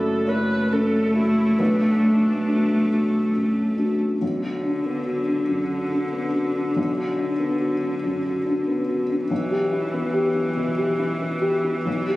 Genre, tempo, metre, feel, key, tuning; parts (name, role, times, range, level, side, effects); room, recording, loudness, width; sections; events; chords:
neoclassical piano and strings; 47 BPM (dotted quarters); 6/8; rubato; B minor; A4 = 440 Hz
warm cello; second line; 0.0-12.2 s; D3 to A3; -24 LUFS; equal
dark viola; accompaniment; 0.0-3.6 s; D4 to B4; -28 LUFS; equal
felt-muted upright piano; accompaniment; 0.0-12.2 s; B1 to D5; -23 LUFS; left 1 dB
dark double bass; bass; 0.0-4.2 s; F#1 to B1; -31 LUFS; equal
light reverb; recorded on a phone in the room, studio reverb; -20 LUFS; side -18 dB against mid
0.0-4.2 A section; 4.2-12.2 B section
0.0 F#m7; 1.6 Bm7; 4.2 Bm; 9.3 Em/B